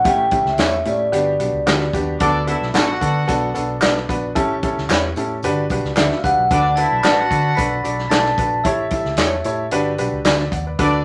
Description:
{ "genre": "uptempo 1960s-style soul", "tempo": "112 BPM", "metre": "4/4", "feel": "straight", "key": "unclear", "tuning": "A4 = 440 Hz", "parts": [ { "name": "vibraphone with soft mallets", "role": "melody", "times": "0.0-1.9, 6.0-9.7 s", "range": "D5 to B5", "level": "-21 LUFS", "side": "equal", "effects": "none" }, { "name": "clear concert grand piano", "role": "accompaniment", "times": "0.0-11.0 s", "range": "A3 to F#5", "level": "-24 LUFS", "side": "equal", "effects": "none" }, { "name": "vintage drum kit", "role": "drums", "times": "0.0-10.9 s", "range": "hi-hat, kick drum, snare drum", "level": "-24 LUFS", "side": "equal", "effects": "none" }, { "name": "vintage muted fingered electric bass", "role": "bass", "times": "0.1-11.0 s", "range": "G1 to D3", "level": "-28 LUFS", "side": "equal", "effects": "none" }, { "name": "tambourine and handclaps", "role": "percussion", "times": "0.1-10.9 s", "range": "none", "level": "-28 LUFS", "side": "equal", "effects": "none" }, { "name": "electric guitar through a small old amp", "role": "stabs", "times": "0.6-10.4 s", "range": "D4 to C#5", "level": "-28 LUFS", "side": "equal", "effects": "harmonic tremolo" }, { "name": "warm studio violin section", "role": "second line", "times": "2.2-11.0 s", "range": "D4 to F#5", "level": "-25 LUFS", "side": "equal", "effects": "none" }, { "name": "glockenspiel with hard plastic mallets", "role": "second line", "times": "6.0-9.7 s", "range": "E6 to B6", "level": "-33 LUFS", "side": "equal", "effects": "none" } ], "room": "wet studio reverb, RT60 0.6 s", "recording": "none", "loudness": "-18 LUFS", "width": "mono", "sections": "0.0-11.0 A section", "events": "none", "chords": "0.1 A7; 1.1 Gmaj7; 2.2 D6; 3.3 Bm7; 4.4 A7; 5.4 Gmaj7; 6.5 D6; 7.6 Bm7; 8.6 A7; 9.7 Gmaj7" }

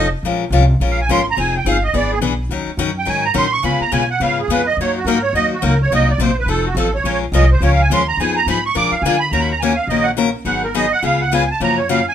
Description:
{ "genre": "acoustic string swing (jazz manouche)", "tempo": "211 BPM", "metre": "4/4", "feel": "swing 59% on 8ths", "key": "Bb minor", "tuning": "A4 = 438 Hz", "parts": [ { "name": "musette accordion", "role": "melody", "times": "0.0-12.1 s", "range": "Gb4 to D6", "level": "-18 LUFS", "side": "right 4 dB", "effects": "none" }, { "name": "picked steel-string acoustic guitar", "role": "accompaniment", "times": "0.0-12.0 s", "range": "C3 to Bb4", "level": "-19 LUFS", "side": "left 5 dB", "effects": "none" }, { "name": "upright bass", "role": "bass", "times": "0.0-12.1 s", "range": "F1 to D3", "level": "-19 LUFS", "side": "equal", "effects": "none" } ], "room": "moderate studio reverb, RT60 0.7 s", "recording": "minimal, uncompressed stereo recording", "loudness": "-14 LUFS", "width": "side -9 dB against mid", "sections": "0.2-9.3 A section; 9.3-12.1 A section", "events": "accordion solo 0.2-12.1", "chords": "0.2 Bbm9; 1.4 Fm9; 1.9 E7; 2.5 Ebm7; 3.6 Db7; 4.8 Gb69; 5.9 Cm7b5; 6.5 F7; 7.0 Bbm9; 8.2 Fm7b5; 8.8 Bb7; 9.3 Ebm7; 10.5 Abm7; 11.0 Db7; 11.6 Gbmaj7" }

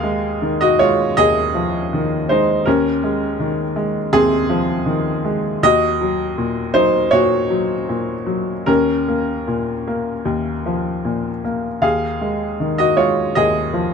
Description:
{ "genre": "neoclassical minimalist piano", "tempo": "75-83 BPM", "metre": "4/4", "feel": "rubato", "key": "Eb dorian", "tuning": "A4 = 439 Hz", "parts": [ { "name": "clear upright piano", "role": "solo", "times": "0.0-13.9 s", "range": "Eb2 to F5", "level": "-16 LUFS", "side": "equal", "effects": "none" } ], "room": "light reverb", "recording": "close, detailed microphones", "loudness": "-16 LUFS", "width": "side -6 dB against mid", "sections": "0.0-13.9 A section", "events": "none", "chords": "0.0 Ebm11; 2.7 Fm7/Eb; 5.6 Ebm7; 8.7 Bbm/Eb; 11.8 Ebm11" }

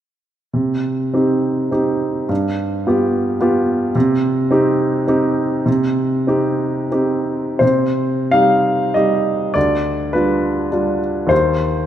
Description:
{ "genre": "classical, romantic character piece for solo piano", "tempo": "80-113 BPM", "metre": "3/4", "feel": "rubato", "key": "C minor", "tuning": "A4 = 441 Hz", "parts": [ { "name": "warm baby grand piano", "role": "solo", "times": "0.5-11.9 s", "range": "D2 to F5", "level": "-15 LUFS", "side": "equal", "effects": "none" } ], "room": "moderate scoring stage reverb, RT60 2.1 s", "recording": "none", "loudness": "-15 LUFS", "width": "side -10 dB against mid", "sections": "0.5-7.6 A section; 7.6-11.9 B section", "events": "none", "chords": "0.5 Cm; 2.3 G7; 3.9 Cm; 9.6 G7/D; 11.3 Cm/Eb" }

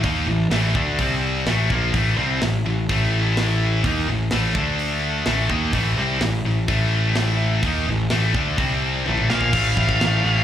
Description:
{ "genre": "heavy metal", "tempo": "126 BPM", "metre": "4/4", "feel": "straight", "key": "unclear", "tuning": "A4 = 440 Hz", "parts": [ { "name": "high-gain distorted guitar", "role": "riff", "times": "0.0-10.4 s", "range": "A2 to D#4", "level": "-22 LUFS", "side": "left 1 dB", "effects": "distortion, slapback echo" }, { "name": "fuzz picked electric bass", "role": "bass", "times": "0.0-10.4 s", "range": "A1 to D#2", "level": "-22 LUFS", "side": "equal", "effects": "overdrive" }, { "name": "tight metal drum kit", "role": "drums", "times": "0.0-10.1 s", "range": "crash cymbal, hi-hat, kick drum, snare drum, toms", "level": "-26 LUFS", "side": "equal", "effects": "none" }, { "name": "high-gain lead guitar", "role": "melody", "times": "9.3-10.4 s", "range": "F5", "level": "-21 LUFS", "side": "equal", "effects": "distortion, digital delay" } ], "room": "little or no reverb", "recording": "live gig heard through the venue's PA, club reverb", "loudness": "-18 LUFS", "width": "side -10 dB against mid", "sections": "0.0-9.5 A section", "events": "drum fill 9.1-9.5", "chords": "0.0 A5; 1.0 C5; 1.5 Am; 4.6 D5; 5.3 Am; 8.6 C5; 9.1 A5" }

